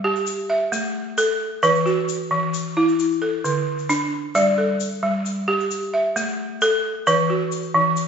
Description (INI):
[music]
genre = west african traditional, West African string and xylophone music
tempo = 88 BPM (dotted quarters)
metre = 12/8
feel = straight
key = unclear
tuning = A4 = 440 Hz
[part]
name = balafon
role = arpeggios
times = 0.0-8.1 s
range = D3 to E5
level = -19 LUFS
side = equal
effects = none
[part]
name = egg shaker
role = percussion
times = 0.2-8.1 s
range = none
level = -34 LUFS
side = left 6 dB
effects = none
[sound]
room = wet large studio reverb, RT60 1.5 s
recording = band playing live in one room, nothing above 7.5 kHz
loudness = -19 LUFS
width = side -6 dB against mid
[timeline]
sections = 0.0-8.1 A section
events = none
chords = 0.3 A5; 1.6 E5; 3.0 D5; 4.3 G5; 5.7 A5; 7.1 E5